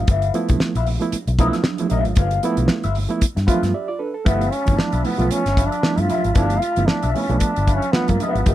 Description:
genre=funk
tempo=114 BPM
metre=4/4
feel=swing 56% on 16ths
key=G mixolydian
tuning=A4 = 439 Hz
part: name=clean electric guitar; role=accompaniment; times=0.0-8.5 s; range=F4 to F5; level=-27 LUFS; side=left 7 dB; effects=wah, spring reverb
part: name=vintage muted fingered electric bass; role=bass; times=0.0-8.5 s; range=G1 to G2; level=-21 LUFS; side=equal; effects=none
part: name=damped 70s drum kit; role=drums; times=0.1-8.5 s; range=hi-hat, kick drum, snare drum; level=-20 LUFS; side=equal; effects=none
part: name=reed electric piano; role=stabs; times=0.3-8.5 s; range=F3 to E5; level=-23 LUFS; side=right 4 dB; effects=overdrive, fast tremolo
part: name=congas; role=percussion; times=0.5-8.5 s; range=none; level=-29 LUFS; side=right 7 dB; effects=none
part: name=clear trombone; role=melody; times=4.3-8.5 s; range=Bb3 to F4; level=-23 LUFS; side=equal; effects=none
part: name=percussive tonewheel organ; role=sustained chords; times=4.3-8.5 s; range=E5 to B5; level=-32 LUFS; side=equal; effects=slow rotary speaker, chorus vibrato
room=little or no reverb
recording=dry, close 1970s-style studio recording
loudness=-17 LUFS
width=side -13 dB against mid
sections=0.0-4.3 A section; 4.3-8.5 B section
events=reed electric piano fill 3.5-4.3; break 3.7-4.3; trombone solo 4.3-8.5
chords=0.0 G13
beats=| 0.08 0.60 1.13 1.65 | 2.17 2.70 3.22 3.74 | 4.27 4.79 5.31 5.84 | 6.36 6.89 7.41 7.94 | 8.46

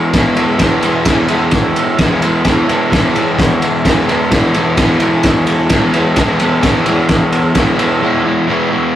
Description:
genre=garage rock duo or trio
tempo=129 BPM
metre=4/4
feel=straight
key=E major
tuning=A4 = 440 Hz
part: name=combo organ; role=sustained chords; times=0.0-8.8 s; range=E4 to B5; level=-26 LUFS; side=equal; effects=none
part: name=crunchy overdriven guitar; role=riff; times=0.0-9.0 s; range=E3 to E4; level=-13 LUFS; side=equal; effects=none
part: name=cloth-damped thuddy drum kit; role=drums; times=0.1-7.9 s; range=kick drum, ride cymbal, snare drum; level=-14 LUFS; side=equal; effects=none
room=moderate studio reverb, RT60 0.6 s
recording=rough rehearsal-room recording, tube saturation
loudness=-10 LUFS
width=side -12 dB against mid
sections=0.0-9.0 A section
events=transistor combo organ fill 1.5-2.5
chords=0.0 E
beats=0.14 | 0.61 1.07 1.54 2.00 | 2.46 2.93 3.39 3.86 | 4.32 4.79 5.25 5.71 | 6.17 6.64 7.10 7.57 | 8.03 8.49 8.95

